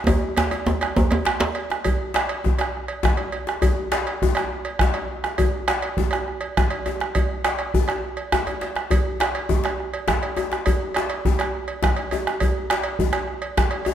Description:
west african traditional, West African drum ensemble; 136 BPM (dotted quarters); 12/8; straight
bombo; percussion; 0.1-13.7 s; -23 LUFS; right 2 dB
cowbell; percussion; 0.1-13.9 s; -30 LUFS; right 5 dB
djembe; percussion; 0.1-13.9 s; -25 LUFS; left 4 dB
djembe; percussion; 0.1-1.5 s; -22 LUFS; right 1 dB
moderate scoring stage reverb, RT60 1.6 s; close, detailed microphones; -20 LUFS; side -10 dB against mid
0.0-1.8 A section; 1.8-13.9 B section
drum fill 0.1-1.8, 8.5-8.9
| 0.07 0.52 0.96 1.41 | 1.85 2.29 2.73 3.18 | 3.62 4.06 4.50 4.95 | 5.39 5.83 6.27 6.71 | 7.15 7.59 8.03 8.47 | 8.91 9.35 9.79 10.23 | 10.66 11.10 11.54 11.98 | 12.41 12.85 13.29 13.72

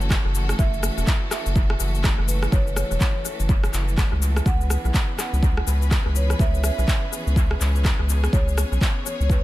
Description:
afro house; 124 BPM; 4/4; swing 60% on 16ths; F# minor; A4 = 440 Hz
rich studio string section; sustained chords; 0.0-9.4 s; E3 to C#5; -32 LUFS; left 1 dB; sidechain pumping
round analog bass; bass; 0.0-9.4 s; E1 to C#2; -22 LUFS; equal; sidechain pumping
electronic cabasa, rim click and handclaps; drums; 0.0-9.4 s; -28 LUFS; left 1 dB; small room ambience, analog delay
electronic kick drum; drums; 0.1-9.4 s; -21 LUFS; equal; overdrive, small room ambience
marimba with soft mallets; melody; 0.6-9.4 s; B4 to F#5; -33 LUFS; right 3 dB; analog delay
little or no reverb; echo-heavy mix; -19 LUFS; side -16 dB against mid
0.0-9.4 A section
0.0 F#m7; 4.5 C#m7
0.11 | 0.59 1.07 1.56 2.04 | 2.52 3.01 3.49 3.98 | 4.46 4.94 5.43 5.91 | 6.40 6.88 7.36 7.85 | 8.33 8.81 9.30

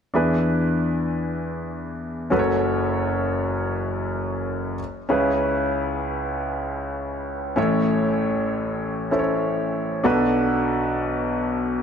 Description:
pop; free time; A4 = 440 Hz
clear grand piano; solo; 0.1-11.8 s; F#1 to C#5; -21 LUFS; equal; tape echo
moderate lush hall reverb, RT60 2.9 s; -21 LUFS; side -7 dB against mid
0.1-5.1 A section; 5.1-11.8 B section
0.1 E7; 2.3 F#m; 4.8 N.C.; 5.1 C#m7; 7.6 A; 10.0 Bm7
free time

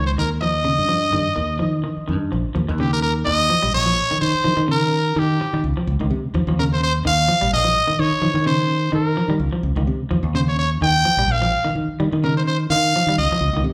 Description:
afrobeat; 127 BPM; 4/4; straight; Eb mixolydian; A4 = 439 Hz
growling trumpet; melody; 0.0-13.6 s; G4 to G5; -22 LUFS; equal
electric guitar at the edge of break-up; arpeggios; 0.0-13.7 s; Db3 to G3; -27 LUFS; equal
fingered electric bass; bass; 0.0-13.7 s; Bb1 to Eb3; -24 LUFS; equal
wet large studio reverb, RT60 1.2 s; band playing live in one room; -19 LUFS; mono
0.0-2.6 A section; 2.6-13.7 B section
0.0 Ebadd9; 2.6 Eb7sus2
0.19 | 0.67 1.14 1.61 2.09 | 2.56 3.03 3.50 3.98 | 4.45 4.92 5.40 5.87 | 6.34 6.81 7.29 7.76 | 8.23 8.70 9.18 9.65 | 10.12 10.59 11.06 11.54 | 12.01 12.48 12.95 13.42

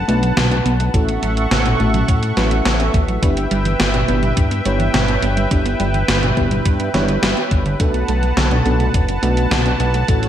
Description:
synthwave; 105 BPM; 4/4; straight; E dorian; A4 = 440 Hz
warm analog pad; sustained chords; 0.0-10.3 s; A4 to E6; -22 LUFS; right 1 dB; chorus, tremolo, sidechain pumping
mellow FM electric piano; stabs; 0.0-10.3 s; A3 to C#5; -24 LUFS; equal; chorus, digital delay
fat analog bass; bass; 0.0-10.3 s; F#1 to A2; -19 LUFS; equal; tube saturation, sidechain pumping
wide unison pluck; arpeggios; 0.1-10.3 s; C#3 to G4; -24 LUFS; right 2 dB; digital delay
gated 80s digital drum machine; drums; 0.1-10.3 s; hi-hat, snare drum, toms; -20 LUFS; equal; gated reverb, gated reverb snare
electronic kick drum; drums; 0.9-10.2 s; -17 LUFS; equal
light reverb; bright 1980s-style digital production; -14 LUFS; side -10 dB against mid
0.0-10.3 A section
0.0 Bm7; 0.9 A6; 3.2 Em7/G; 7.8 Bm7
0.37 | 0.94 1.51 2.08 2.66 | 3.23 3.80 4.37 4.94 | 5.51 6.08 6.66 7.23 | 7.80 8.37 8.94 9.51 | 10.09

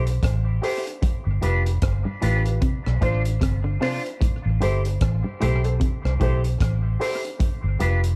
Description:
roots reggae; 75 BPM; 4/4; swing 59% on 16ths; A minor; A4 = 436 Hz
electric guitar with an envelope filter; accompaniment; 0.0-8.0 s; D4 to C5; -34 LUFS; equal; subtle chorus, dub echo
warm upright piano; stabs; 0.0-8.0 s; D4 to C5; -32 LUFS; equal
vintage muted fingered electric bass; bass; 0.0-8.2 s; F1 to C2; -24 LUFS; equal
crunchy breakbeat drum kit; drums; 0.1-8.2 s; hi-hat, kick drum, rim click; -28 LUFS; equal; tape echo
semi-hollow electric guitar; arpeggios; 1.0-8.0 s; G2 to D3; -32 LUFS; equal
little or no reverb; echo-heavy mix; -23 LUFS; mono
0.0-8.2 A section
0.0 Am7; 1.0 G7; 2.6 Dm7; 4.2 Am7; 7.4 G7
0.23 | 1.02 1.82 2.62 3.42 | 4.21 5.01 5.81 6.60 | 7.40

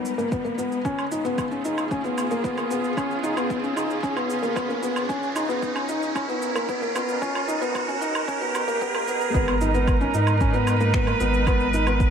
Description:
piano and strings electronica; 113 BPM; 4/4; straight; A4 = 442 Hz
muted string quartet; sustained chords; 0.0-12.1 s; C#3 to B4; -28 LUFS; right 4 dB; sidechain pumping, low-pass filter
felt-muted upright piano; riff; 0.0-12.1 s; A#3 to D#4; -25 LUFS; left 2 dB; digital delay
riser; sound effects; 0.0-9.3 s; -33 LUFS; right 1 dB
electronic shaker, woodblock and finger snaps; drums; 0.1-12.1 s; -33 LUFS; right 2 dB; high-pass filter on perc, high-pass filter on snare, high-pass filter on room
electronic kick drum; drums; 0.3-12.1 s; -26 LUFS; right 1 dB; overdrive
round analog bass; bass; 9.3-12.1 s; G#1 to G#2; -24 LUFS; equal; sidechain pumping
moderate concert hall reverb, RT60 2.0 s; high-pass filter; -22 LUFS; side -7 dB against mid
0.0-9.3 A section; 9.3-12.1 B section
build-up 0.0-9.3; riser 0.0-9.3; filter sweep 0.0-9.3; drop 9.3-12.1
0.0 G#madd9; 0.8 C#; 9.3 G#madd9
0.32 | 0.85 1.38 1.91 2.44 | 2.97 3.50 4.03 4.57 | 5.10 5.63 6.16 6.69 | 7.22 7.75 8.28 8.81 | 9.34 9.88 10.41 10.94 | 11.47 12.00

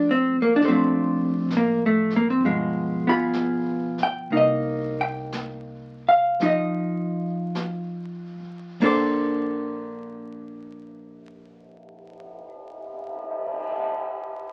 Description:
jazz ballad; 46-68 BPM; 4/4; swing 69% on 8ths; Bb major; A4 = 439 Hz
vintage hollow-body jazz guitar; accompaniment; 0.0-12.5 s; B2 to D6; -24 LUFS; equal
upright bass; bass; 0.0-12.4 s; G1 to F2; -43 LUFS; equal
jazz brush drum kit; drums; 0.6-13.8 s; brushed snare drum, crash cymbal, cymbal swell, hi-hat, kick drum, snare drum; -36 LUFS; equal
moderate studio ambience, RT60 0.5 s; very old 78 rpm record, vinyl crackle; -24 LUFS; mono
0.0-4.3 A section; 4.3-8.8 B section; 8.8-14.0 C section
slowing down 0.6-8.8
0.0 Bbmaj9; 2.4 G7b9; 4.3 Cm7; 6.4 F7(no3); 8.8 Bbmaj9
| 0.62 1.51 2.41 3.34 | 4.31 5.32 6.40 7.55 | 8.80 10.11 11.42 12.73

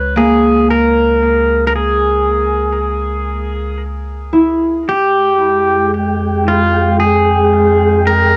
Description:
ambient; 57 BPM; 4/4; straight; A4 = 440 Hz
pedal steel guitar; melody; 0.0-8.4 s; F4 to Cb5; -16 LUFS; equal; cassette tape, analog delay
warm sub bass; bass; 0.0-8.4 s; Db2 to F2; -21 LUFS; equal
concert harp; arpeggios; 0.2-6.9 s; Bb3 to Fb4; -18 LUFS; equal; analog delay
wind-like tuned noise texture; texture; 5.1-8.4 s; Ab3 to G5; -19 LUFS; equal; built-in reverb
wet booth ambience, RT60 0.3 s; home recording on cassette; -13 LUFS; mono
0.0-4.9 A section; 4.9-8.4 B section
0.0 Db5; 4.9 Fmadd9
| 0.69 1.74 2.79 3.85 | 4.90 5.95 7.00 8.06

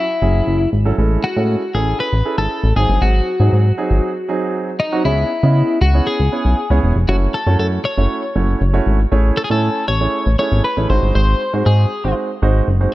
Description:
dance-pop; 118 BPM; 4/4; straight; C# minor; A4 = 440 Hz
twelve-string electric guitar; melody; 0.0-12.1 s; D#4 to C#5; -20 LUFS; left 2 dB
warm grand piano; accompaniment; 0.0-12.9 s; F#3 to G#5; -21 LUFS; right 4 dB
chorused synth bass; bass; 0.2-12.9 s; E1 to C#3; -14 LUFS; equal
light reverb, small room ambience; dark, warm production; -14 LUFS; side -16 dB against mid
0.0-5.1 A section; 5.1-12.9 B section
build-up 0.0-5.1; break 4.0-5.1; drop 5.1-12.9
0.0 F#7(no3); 1.0 Amaj7; 2.8 G#7; 5.1 C#m7; 7.1 F#m7; 9.1 Amaj7; 10.9 G#7
0.47 | 0.98 1.49 2.00 2.51 | 3.02 3.53 4.03 4.54 | 5.05 5.56 6.07 6.58 | 7.08 7.59 8.10 8.61 | 9.12 9.63 10.14 10.64 | 11.15 11.66 12.17 12.68

